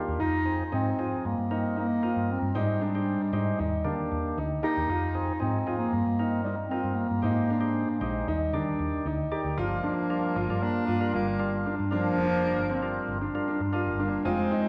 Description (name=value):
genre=progressive instrumental, progressive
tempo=231 BPM (eighths)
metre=9/8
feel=straight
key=unclear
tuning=A4 = 444 Hz
part: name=percussive tonewheel organ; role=accompaniment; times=0.0-14.6 s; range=Eb3 to D5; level=-37 LUFS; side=equal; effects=overdrive
part: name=warm grand piano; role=arpeggios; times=0.0-14.7 s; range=C4 to G4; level=-35 LUFS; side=equal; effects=none
part: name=hollow-body short-scale fingered electric bass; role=bass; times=0.1-14.5 s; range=F1 to Eb3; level=-35 LUFS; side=equal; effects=none
part: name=mellow bass clarinet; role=melody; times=0.2-14.7 s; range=F3 to Eb4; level=-32 LUFS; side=equal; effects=none
part: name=clear alto saxophone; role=second line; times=9.6-14.7 s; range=Bb3 to D4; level=-37 LUFS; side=equal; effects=none
room=wet concert hall reverb, RT60 2.2 s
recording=recorded in a church or concert hall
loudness=-28 LUFS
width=mono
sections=0.0-9.6 A section; 9.6-14.7 B section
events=none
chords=0.2 Fm7; 1.2 Cm7/G; 2.6 Abmaj7; 3.6 Ebmaj7; 4.9 Fm7; 5.9 Cm7/G; 7.2 Abmaj7; 8.3 Ebmaj7; 9.6 Gm7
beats=| 0.20 0.47 0.73 0.99 1.25 1.51 1.77 2.03 2.29 | 2.55 2.81 3.07 3.33 3.59 3.85 4.12 4.38 4.64 | 4.90 5.16 5.42 5.68 5.94 6.20 6.46 6.72 6.98 | 7.24 7.50 7.76 8.02 8.28 8.54 8.80 9.06 9.32 | 9.58 9.84 10.10 10.36 10.62 10.88 11.14 11.40 11.66 | 11.92 12.18 12.44 12.70 12.96 13.22 13.47 13.73 13.99 | 14.25 14.51